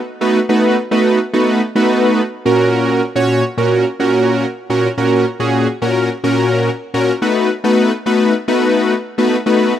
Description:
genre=pop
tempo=107 BPM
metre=4/4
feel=straight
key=unclear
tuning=A4 = 440 Hz
part: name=big bright polysynth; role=solo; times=0.2-9.7 s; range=A#2 to C#5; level=-12 LUFS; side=equal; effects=chorus
room=light reverb, digital ambience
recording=rough home demo mix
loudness=-12 LUFS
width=side -10 dB against mid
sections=0.0-9.8 A section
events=none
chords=0.0 B7; 2.5 F#/A#; 7.2 B7

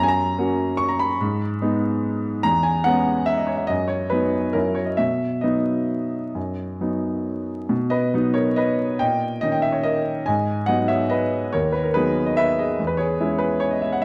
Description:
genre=classical, piano waltz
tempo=127-153 BPM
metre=3/4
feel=rubato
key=B major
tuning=A4 = 440 Hz
part: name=warm baby grand piano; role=solo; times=0.0-14.0 s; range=D#2 to C#6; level=-22 LUFS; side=equal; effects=none
room=moderate recital hall reverb, RT60 1.3 s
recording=vinyl crackle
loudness=-22 LUFS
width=mono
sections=0.0-7.7 A section; 7.7-14.0 A section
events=none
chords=0.0 F#; 1.2 G#m; 2.4 C#m7/E; 3.7 B/F#; 4.5 F#7; 5.0 B; 9.0 D#7/A#; 10.3 G#m7; 12.8 C#m/E

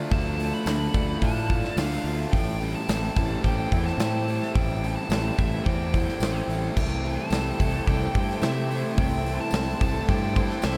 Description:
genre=rock, shoegaze and dream pop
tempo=108 BPM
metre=4/4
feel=straight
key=A minor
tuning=A4 = 440 Hz
part: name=electric guitar through a small old amp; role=arpeggios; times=0.0-10.8 s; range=E3 to G4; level=-37 LUFS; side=equal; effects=subtle chorus, tape echo
part: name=overdriven electric guitar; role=riff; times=0.0-10.8 s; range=A2 to E4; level=-37 LUFS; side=equal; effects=lush chorus
part: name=raw garage guitar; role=riff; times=0.0-10.8 s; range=A2 to A4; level=-36 LUFS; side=equal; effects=overdrive, reverse reverb
part: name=nasal lead guitar with a parked wah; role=melody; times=0.1-10.8 s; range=E5 to B5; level=-36 LUFS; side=equal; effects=overdrive, tape echo
part: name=fuzz fingered electric bass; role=bass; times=0.1-10.8 s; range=A1 to C3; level=-31 LUFS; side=equal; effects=overdrive
part: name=big rock drum kit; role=drums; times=0.1-10.8 s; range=crash cymbal, hi-hat, kick drum, snare drum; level=-29 LUFS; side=equal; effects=none
part: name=tambourine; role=percussion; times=0.7-10.8 s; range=none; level=-47 LUFS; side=equal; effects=none
part: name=string machine, full ensemble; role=sustained chords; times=6.7-10.8 s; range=E4 to A5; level=-36 LUFS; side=equal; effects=ensemble chorus
room=moderate plate reverb, RT60 2.3 s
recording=dreamy mix soaked in reverb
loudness=-25 LUFS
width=mono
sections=0.0-10.8 A section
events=none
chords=0.0 Dm; 2.3 Am7; 6.8 C6

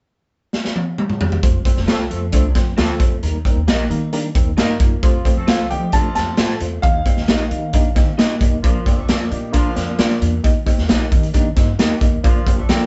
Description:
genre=uptempo 1960s-style soul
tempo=133 BPM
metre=4/4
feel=straight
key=F mixolydian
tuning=A4 = 440 Hz
part: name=raw garage drum kit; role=drums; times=0.5-12.8 s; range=hi-hat, kick drum, snare drum, toms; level=-19 LUFS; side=equal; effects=none
part: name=reed electric piano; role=accompaniment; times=1.4-12.8 s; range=G3 to Eb5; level=-28 LUFS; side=equal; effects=fast tremolo
part: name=upright bass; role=bass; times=1.4-12.9 s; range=F1 to F3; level=-26 LUFS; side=equal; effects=none
part: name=hollow-body jazz guitar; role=riff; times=1.7-12.9 s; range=A3 to D4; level=-29 LUFS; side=equal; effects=none
part: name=dark horn section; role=second line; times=1.9-12.9 s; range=C3 to Bb4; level=-30 LUFS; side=equal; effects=none
part: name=electric guitar through a small old amp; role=stabs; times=1.9-12.8 s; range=C4 to F5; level=-28 LUFS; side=equal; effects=none
part: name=clear concert grand piano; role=melody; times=5.5-8.1, 12.7-12.9 s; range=F5 to A5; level=-26 LUFS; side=equal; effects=none
room=light reverb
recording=band playing live in one room, nothing above 7.9 kHz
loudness=-17 LUFS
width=mono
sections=0.0-1.4 A section; 1.4-5.0 B section; 5.0-12.9 C section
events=drum fill 0.5-1.4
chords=0.0 N.C.; 1.4 F; 3.2 Eb; 5.0 F; 6.8 Eb; 8.6 Bb; 10.4 Eb; 12.2 Bb

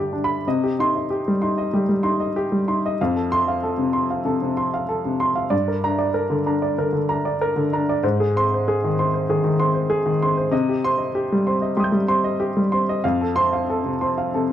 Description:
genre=neoclassical minimalist piano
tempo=95 BPM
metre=4/4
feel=rubato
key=C minor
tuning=A4 = 440 Hz
part: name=warm baby grand piano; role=solo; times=0.0-14.5 s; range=F2 to G6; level=-19 LUFS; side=equal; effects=none
room=light reverb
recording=dark, warm production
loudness=-19 LUFS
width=side -11 dB against mid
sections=0.4-14.5 A section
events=none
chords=0.4 Cm; 3.0 F; 5.5 Gm; 8.0 Ab; 10.5 Cm; 13.0 F

